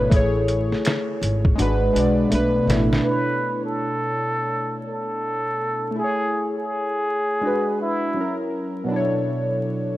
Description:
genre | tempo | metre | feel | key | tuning
lo-fi hip hop | 82 BPM | 4/4 | swing 62% on 16ths | B dorian | A4 = 443 Hz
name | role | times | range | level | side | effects
warm analog keys | accompaniment | 0.0-10.0 s | B2 to D5 | -22 LUFS | equal | chorus, phaser, cassette tape
upright bass | bass | 0.0-3.0 s | G#1 to B1 | -23 LUFS | equal | none
lo-fi sampler-style drum kit | drums | 0.1-3.0 s | finger snaps, hi-hat, kick drum, snare drum | -21 LUFS | equal | none
trumpet with plunger mute | melody | 3.0-8.4 s | E4 to B4 | -24 LUFS | equal | none
room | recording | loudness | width
light reverb, small room reverb | vinyl crackle | -20 LUFS | side -15 dB against mid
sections
0.0-3.0 A section; 3.0-10.0 B section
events
drum fill 1.6-3.0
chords
0.1 Amaj7; 1.6 G#m7b5; 2.3 Bm7; 3.0 Bm11; 6.0 Amaj7; 7.4 E9/G#; 8.2 F#7; 8.9 Bm11

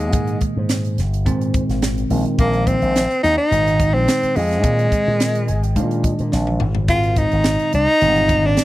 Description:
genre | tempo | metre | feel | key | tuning
electric jazz fusion | 107 BPM | 4/4 | swing 53% on 16ths | Bb mixolydian | A4 = 440 Hz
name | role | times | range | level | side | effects
breathy tenor saxophone | melody | 0.0-8.6 s | Ab3 to F4 | -18 LUFS | equal | none
slap bass with an envelope filter | bass | 0.0-8.6 s | G1 to Bb2 | -20 LUFS | equal | none
crisp fusion drum kit | drums | 0.0-8.6 s | hi-hat, kick drum, snare drum, toms | -22 LUFS | equal | none
bell-like tine electric piano | accompaniment | 0.1-8.6 s | Bb2 to Ab5 | -23 LUFS | right 1 dB | lush chorus
room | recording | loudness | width
small room ambience | dry, close 1970s-style studio recording | -15 LUFS | side -16 dB against mid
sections
0.0-8.6 A section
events
tine electric piano fill 5.2-6.9; drum fill 6.3-6.9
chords
0.0 Abmaj9; 2.1 Bb9sus4; 6.9 Abmaj9

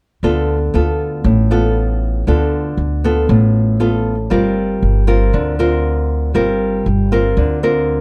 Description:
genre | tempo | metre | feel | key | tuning
bossa nova | 118 BPM | 4/4 | straight | D minor | A4 = 440 Hz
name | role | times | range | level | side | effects
nylon-string guitar | accompaniment | 0.2-8.0 s | A2 to Bb4 | -18 LUFS | equal | none
upright bass | bass | 0.2-8.0 s | G1 to D2 | -19 LUFS | equal | none
room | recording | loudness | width
light reverb | dark, warm production | -16 LUFS | mono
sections
0.2-8.0 A section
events
none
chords
0.2 Dm6; 4.3 Gm7

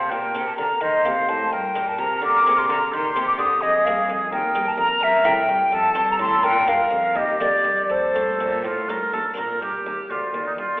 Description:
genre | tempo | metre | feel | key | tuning
classical, baroque-style sonata movement with continuo | 85 BPM (dotted quarters) | 6/8 | rubato | Bb major | A4 = 441 Hz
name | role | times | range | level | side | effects
mellow hollow silver concert flute | melody | 0.0-10.8 s | C5 to Eb6 | -20 LUFS | left 1 dB | none
warm oboe | second line | 0.0-10.8 s | Eb4 to C5 | -24 LUFS | right 1 dB | none
buff-stop harpsichord | accompaniment | 0.0-10.8 s | D2 to C5 | -31 LUFS | equal | none
rich cello | bass | 0.0-10.8 s | D2 to Eb3 | -32 LUFS | equal | none
room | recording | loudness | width
wet recital hall reverb, RT60 1.7 s | recorded in a church or concert hall, telephone sound | -18 LUFS | side -20 dB against mid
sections
0.0-9.4 A section; 9.4-10.8 B section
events
none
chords
0.1 Bb; 0.8 Eb; 2.2 Bb7; 2.9 Eb; 3.6 Bb7/F; 4.3 Eb; 5.0 C7/G; 5.7 F; 6.4 Bb; 7.2 Eb; 7.9 F; 9.4 Bb

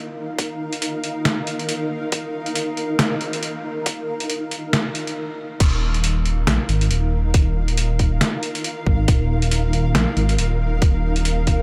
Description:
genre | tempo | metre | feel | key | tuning
deep dubstep | 138 BPM | 4/4 | swing 57% on 16ths, half-time | unclear | A4 = 440 Hz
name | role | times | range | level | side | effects
granular cloud pad | sustained chords | 0.0-11.6 s | Eb4 to F5 | -29 LUFS | equal | built-in reverb
dark detuned saw bass | bass | 0.0-11.6 s | Eb1 to Bb1 | -22 LUFS | equal | high-pass filter
electronic kick drum | drums | 0.4-11.6 s | none | -20 LUFS | equal | high-pass filter on kick, high-pass filter on room
trip hop sampler-style drum kit | drums | 0.4-11.6 s | crash cymbal, hi-hat, snare drum | -26 LUFS | equal | none
room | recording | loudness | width
light reverb | none | -21 LUFS | mono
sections
0.0-5.6 A section; 5.6-11.6 B section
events
build-up 0.0-5.6; stop 5.2-5.6; drop 5.6-11.6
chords
0.0 Eb5

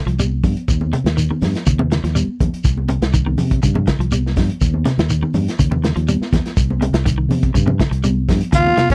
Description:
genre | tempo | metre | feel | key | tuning
afrobeat | 122 BPM | 4/4 | straight | unclear | A4 = 440 Hz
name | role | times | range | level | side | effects
semi-hollow electric guitar | arpeggios | 0.1-8.9 s | C3 to G3 | -24 LUFS | equal | none
fingered electric bass | bass | 0.1-8.9 s | C2 to C3 | -21 LUFS | equal | none
crunchy breakbeat drum kit | drums | 0.1-8.9 s | hi-hat, kick drum, snare drum | -22 LUFS | equal | none
congas | percussion | 0.2-8.9 s | none | -25 LUFS | equal | none
shekere | percussion | 0.2-8.9 s | none | -25 LUFS | equal | none
raspy tenor saxophone | melody | 8.5-8.9 s | Db4 to F4 | -17 LUFS | equal | none
trombone with bucket mute | second line | 8.5-8.9 s | Db4 to F4 | -25 LUFS | equal | none
room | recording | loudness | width
little or no reverb | dry, close 1970s-style studio recording | -17 LUFS | mono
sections
0.0-8.5 A section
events
none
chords
0.0 C5; 0.7 Eb; 2.6 C5; 4.6 Eb; 6.6 C5

